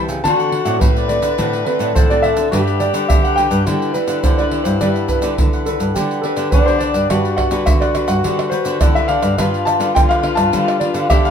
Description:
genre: samba and choro.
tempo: 105 BPM.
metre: 4/4.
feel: straight.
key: G major.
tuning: A4 = 440 Hz.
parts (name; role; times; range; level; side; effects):
cavaquinho; accompaniment; 0.0-11.3 s; D4 to G5; -25 LUFS; right 4 dB; none.
nylon-string guitar; accompaniment; 0.0-11.3 s; A2 to B4; -24 LUFS; left 4 dB; none.
nylon-string guitar; bass; 0.0-11.3 s; G2 to D3; -22 LUFS; right 1 dB; none.
tube shaker, pandeiro, surdo and tamborim; percussion; 0.1-11.3 s; none; -18 LUFS; right 1 dB; none.
warm concert grand piano; melody; 0.2-11.3 s; G4 to A5; -20 LUFS; right 1 dB; none.
breathy tenor saxophone; second line; 0.2-11.3 s; D4 to B4; -21 LUFS; left 7 dB; none.
room: moderate studio reverb, RT60 0.8 s.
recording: minimal, uncompressed stereo recording.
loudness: -14 LUFS.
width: side -8 dB against mid.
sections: 0.0-7.1 A section; 7.1-11.3 A section.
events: none.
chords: 0.2 D7; 2.5 Gmaj7; 9.4 G7.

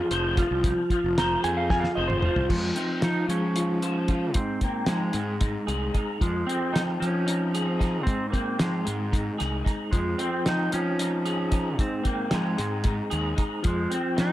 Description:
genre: psychedelic rock.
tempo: 226 BPM (eighths).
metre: 7/8.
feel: straight.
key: F minor.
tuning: A4 = 440 Hz.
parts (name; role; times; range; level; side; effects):
clean lap steel guitar; melody; 0.0-14.3 s; Ab3 to Bb5; -30 LUFS; right 2 dB; slapback echo.
electric guitar through a small old amp; riff; 0.0-14.3 s; Ab2 to C5; -28 LUFS; left 1 dB; rotary speaker.
fuzz fingered electric bass; bass; 0.1-14.3 s; F1 to F3; -29 LUFS; equal; overdrive.
cloth-damped thuddy drum kit; drums; 0.1-14.3 s; crash cymbal, hi-hat, kick drum, snare drum, toms; -27 LUFS; equal; none.
room: studio ambience.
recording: none.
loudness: -23 LUFS.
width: side -14 dB against mid.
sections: 0.0-2.5 A section; 2.5-14.3 B section.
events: electric slide guitar solo 0.0-2.5; drum fill 1.7-2.5.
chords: 0.0 Fm; 2.5 Fm7; 4.4 Ab; 6.2 Fm7; 8.1 Ab; 9.9 Fm7; 11.8 Ab; 13.7 Fm7.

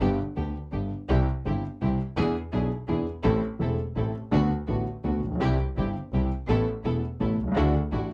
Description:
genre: tango.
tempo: 167 BPM.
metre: 3/4.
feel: rubato.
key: unclear.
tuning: A4 = 441 Hz.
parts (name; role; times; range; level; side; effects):
dark concert grand piano; accompaniment; 0.0-8.1 s; E1 to A4; -29 LUFS; equal; none.
warm chamber string section; stabs; 0.0-8.1 s; B3 to A4; -38 LUFS; equal; none.
warm double bass; bass; 0.0-8.1 s; E1 to E2; -32 LUFS; equal; none.
room: light reverb.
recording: dark, warm production.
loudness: -27 LUFS.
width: mono.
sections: 0.0-1.1 A section; 1.1-8.1 A section.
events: none.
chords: 0.0 G; 1.1 C; 2.2 E7; 3.2 Am; 4.3 D6; 5.4 C; 6.5 Asus2; 7.6 Dadd9.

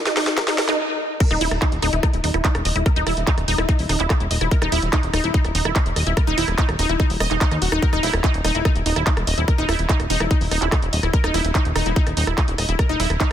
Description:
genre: psychedelic trance.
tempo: 145 BPM.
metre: 4/4.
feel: straight.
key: unclear.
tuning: A4 = 440 Hz.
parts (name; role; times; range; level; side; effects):
wide unison pluck; riff; 0.0-13.3 s; Eb4 to Eb5; -23 LUFS; moving between left 3 dB and right 3 dB; auto-pan, sidechain pumping, ping-pong delay.
drum and bass drum kit; drums; 0.1-13.3 s; crash cymbal, handclaps, hi-hat, rim click, snare drum; -25 LUFS; right 1 dB; high-pass filter on hats, high-pass filter on snare, high-pass filter on cymbals.
electronic kick drum; drums; 0.4-13.3 s; none; -19 LUFS; equal; high-pass filter on kick.
plucky analog bass; bass; 1.3-13.2 s; Eb1 to Eb2; -22 LUFS; equal; none.
room: light reverb.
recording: dense, heavily limited modern master.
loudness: -17 LUFS.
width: side -10 dB against mid.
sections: 0.0-1.2 A section; 1.2-13.3 B section.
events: build-up 0.0-1.2; drum fill 0.0-0.8; stop 0.8-1.2; drop 1.2-13.3.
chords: 0.0 Eb5.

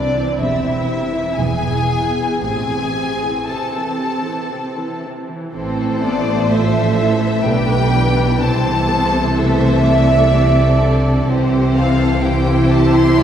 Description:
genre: classical, slow romantic movement for string orchestra.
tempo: 56-64 BPM.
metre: 3/4.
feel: rubato.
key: A minor.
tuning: A4 = 440 Hz.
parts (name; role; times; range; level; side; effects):
clear studio violin section; melody; 0.0-13.2 s; D5 to C6; -21 LUFS; left 1 dB; none.
rich studio violin section; second line; 0.0-13.2 s; D4 to D5; -24 LUFS; left 2 dB; none.
rich studio viola section; accompaniment; 0.0-13.2 s; C3 to E4; -20 LUFS; right 1 dB; none.
clear studio cello section; bass; 0.0-13.2 s; E2 to C3; -20 LUFS; equal; none.
rich studio double bass section; bass; 0.0-13.2 s; E1 to C2; -19 LUFS; right 2 dB; none.
room: wet concert hall reverb, RT60 2.5 s.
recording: heard from further back in the room.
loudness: -14 LUFS.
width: side -9 dB against mid.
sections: 0.0-5.5 A section; 5.5-13.2 A section.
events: none.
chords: 0.4 C/E; 1.4 E; 2.4 Am; 8.4 Am/C; 11.3 C.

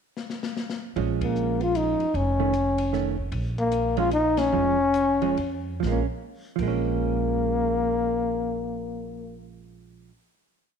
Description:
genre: jazz, small-group swing and bop.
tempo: 129-153 BPM.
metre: 3/4.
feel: swing 64% on 8ths.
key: Bb minor.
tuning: A4 = 440 Hz.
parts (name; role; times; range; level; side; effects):
open jazz drum kit; drums; 0.2-6.7 s; crash cymbal, hi-hat, kick drum, ride cymbal, snare drum; -37 LUFS; left 5 dB; none.
hollow-body jazz guitar; accompaniment; 1.0-10.2 s; Eb3 to Db4; -30 LUFS; right 14 dB; none.
upright bass; bass; 1.0-10.1 s; F1 to F2; -30 LUFS; right 1 dB; none.
mellow trombone; melody; 1.2-9.4 s; Bb3 to F4; -24 LUFS; left 3 dB; none.
room: moderate echo chamber reverb, RT60 1.3 s, studio ambience.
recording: 1960s-style stereo.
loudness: -23 LUFS.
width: side -7 dB against mid.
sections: 0.0-1.0 pickup bar; 1.0-5.8 A section; 5.8-8.6 final chord.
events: drum fill 0.2-1.0; band accent 1.2, 4.3; slowing down 3.3-5.8.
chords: 0.0 N.C.; 1.0 Bbm7; 2.1 F7b13; 3.3 Bbm7.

